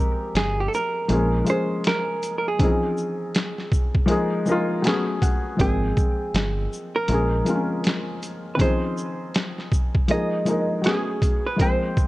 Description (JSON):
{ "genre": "lo-fi hip hop", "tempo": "80 BPM", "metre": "4/4", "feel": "swing 62% on 16ths", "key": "unclear", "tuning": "A4 = 440 Hz", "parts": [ { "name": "hollow-body jazz guitar", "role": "melody", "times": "0.0-12.1 s", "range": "G4 to Eb5", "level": "-26 LUFS", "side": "right 2 dB", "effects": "low-pass filter" }, { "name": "felt-muted upright piano", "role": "accompaniment", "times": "0.0-12.1 s", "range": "Eb3 to Bb5", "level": "-24 LUFS", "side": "left 2 dB", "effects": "cassette tape, low-pass filter" }, { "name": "deep dub fingered electric bass", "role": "bass", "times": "0.3-7.4 s", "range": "G1 to Bb1", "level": "-24 LUFS", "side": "equal", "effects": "none" }, { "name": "boom bap sampler-style drum kit", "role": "drums", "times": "0.4-12.1 s", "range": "hi-hat, kick drum, shaker, snare drum", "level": "-23 LUFS", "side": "equal", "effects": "none" } ], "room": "light reverb", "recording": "cassette tape", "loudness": "-20 LUFS", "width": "side -18 dB against mid", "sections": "0.0-12.1 A section", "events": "felt piano fill 4.1-5.6", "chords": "0.0 Abmaj13; 1.1 Bbm7; 2.6 Dbmaj9; 4.1 Bb7sus4; 4.8 Amaj13; 5.6 Abmaj13; 7.1 Bbm7; 8.6 Dbmaj9; 10.1 Bb7sus4; 10.8 Amaj13" }